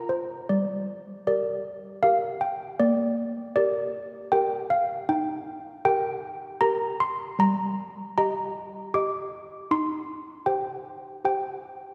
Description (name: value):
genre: classical, tune for handbells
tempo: 78 BPM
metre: 3/4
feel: straight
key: unclear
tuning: A4 = 437 Hz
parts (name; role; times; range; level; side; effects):
- malleted handbells; solo; 0.0-11.9 s; G3 to D6; -27 LUFS; equal; none
room: wet church reverb, RT60 2.6 s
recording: none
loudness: -27 LUFS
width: mono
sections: 0.0-11.9 A section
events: none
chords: 0.5 Gm; 2.8 Gm/Bb; 5.1 Eb; 7.4 Eb/G; 9.7 Cm/Eb